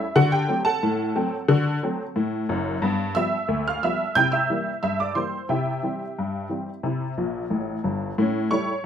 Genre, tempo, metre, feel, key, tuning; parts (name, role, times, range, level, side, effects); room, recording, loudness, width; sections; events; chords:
ragtime piano; 90 BPM; 2/4; straight; A4 = 440 Hz
honky-tonk upright piano; solo; 0.0-8.9 s; F#1 to G6; -22 LUFS; equal
moderate club reverb, RT60 0.6 s; -22 LUFS; side -8 dB against mid
0.0-8.2 A section
honky-tonk piano fill 7.2-8.2
0.2 D7; 2.8 G7; 4.1 C7; 5.5 C; 8.2 A7